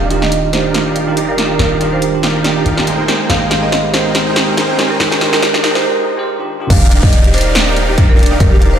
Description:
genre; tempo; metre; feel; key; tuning
future bass; 141 BPM; 4/4; swing 55% on 16ths, half-time; Eb major; A4 = 439 Hz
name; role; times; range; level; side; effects
marimba with medium hard mallets; melody; 0.0-8.8 s; Bb4 to F5; -20 LUFS; right 1 dB; sidechain pumping, low-pass filter, dub echo
Celtic harp; arpeggios; 0.0-2.5, 6.7-8.8 s; C4 to Ab4; -24 LUFS; right 2 dB; sidechain pumping, tape echo
supersaw chords; riff; 0.0-8.8 s; Eb4 to G5; -19 LUFS; right 1 dB; sidechain pumping, low-pass filter
warm 808-style bass; bass; 0.0-8.8 s; Eb1 to Ab1; -19 LUFS; equal; sidechain pumping
riser and downlifter; sound effects; 1.2-8.8 s; none; -24 LUFS; equal; none
bell-like tine electric piano; accompaniment; 0.1-6.7 s; Eb3 to C5; -18 LUFS; right 3 dB; slow stereo tremolo, sidechain pumping, tape echo
big-room dance drum kit; drums; 0.1-8.7 s; crash cymbal, hi-hat, snare drum; -17 LUFS; equal; none
electronic kick drum; drums; 6.7-8.5 s; none; -9 LUFS; equal; none
room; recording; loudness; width
moderate lush hall reverb, RT60 2.6 s; played on a big sound system in a bare room, stone room reverb, high-pass filter; -11 LUFS; side -9 dB against mid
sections
0.0-6.7 A section; 6.7-8.8 B section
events
build-up 0.0-6.7; drum fill 0.0-5.8; filter sweep on supersaw synth 0.0-6.7; filter sweep on marimba 0.0-6.7; filter sweep 0.0-6.7; riser 1.2-5.8; break 5.8-6.7; drop 6.7-8.8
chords
0.0 Ebmaj9; 3.1 Abmaj9; 6.5 Ebmaj9

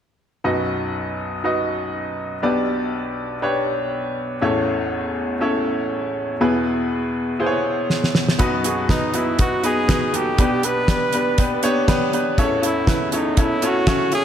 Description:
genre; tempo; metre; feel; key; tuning
piano-driven pop; 121 BPM; 4/4; swing 56% on 16ths; B mixolydian; A4 = 440 Hz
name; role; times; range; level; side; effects
bright upright piano; accompaniment; 0.4-14.2 s; A1 to D#5; -20 LUFS; left 1 dB; slapback echo
damped 70s drum kit; drums; 7.9-14.2 s; hi-hat, kick drum, snare drum; -20 LUFS; equal; none
clear trumpet; melody; 8.7-14.2 s; D#4 to B4; -22 LUFS; right 1 dB; slapback echo
room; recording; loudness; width
moderate scoring stage reverb, RT60 1.8 s, small room ambience; big arena sound; -18 LUFS; side -9 dB against mid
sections
0.4-8.4 A section; 8.4-14.2 B section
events
drum fill 7.9-8.4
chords
0.4 B; 2.4 G/B; 4.4 A; 6.4 E; 8.4 B; 10.4 G/B; 12.4 A

